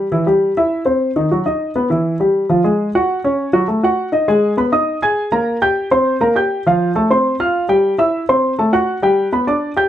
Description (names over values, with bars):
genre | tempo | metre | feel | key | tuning
jazz | 202 BPM | 4/4 | straight | unclear | A4 = 440 Hz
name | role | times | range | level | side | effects
warm baby grand piano | solo | 0.0-9.9 s | Eb3 to G#6 | -14 LUFS | equal | none
room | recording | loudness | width
moderate studio reverb, RT60 0.6 s | none | -14 LUFS | side -11 dB against mid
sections
0.0-4.3 A section; 4.3-9.9 B section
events
none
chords
0.0 Em; 0.7 Cm; 1.3 B; 1.9 Em; 2.5 Fm; 3.1 F#5; 3.7 D#dim/A; 4.3 G#madd9; 5.5 C5; 6.6 F; 7.8 C/G; 8.4 Am6; 9.0 G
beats
0.11 0.41 | 0.71 1.00 1.30 1.60 | 1.90 2.19 2.49 2.79 | 3.09 3.38 3.68 3.98 | 4.28 4.57 4.87 5.17 | 5.46 5.76 6.05 6.35 | 6.65 6.94 7.24 7.54 | 7.83 8.13 8.42 8.72 | 9.01 9.31 9.61